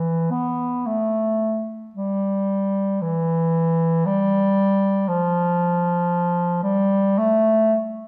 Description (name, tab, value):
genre	classical, free, expressive piece for unaccompanied bass clarinet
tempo	52-60 BPM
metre	3/4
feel	rubato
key	unclear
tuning	A4 = 440 Hz
part	warm bass clarinet	solo	0.0-7.7 s	E3 to B3	-21 LUFS	equal	none
room	wet scoring stage reverb, RT60 1.6 s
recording	dark, warm production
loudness	-21 LUFS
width	mono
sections	0.0-8.1 A section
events	none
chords	none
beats	0.86 | 1.95 3.01 4.07 | 5.08 6.11 7.19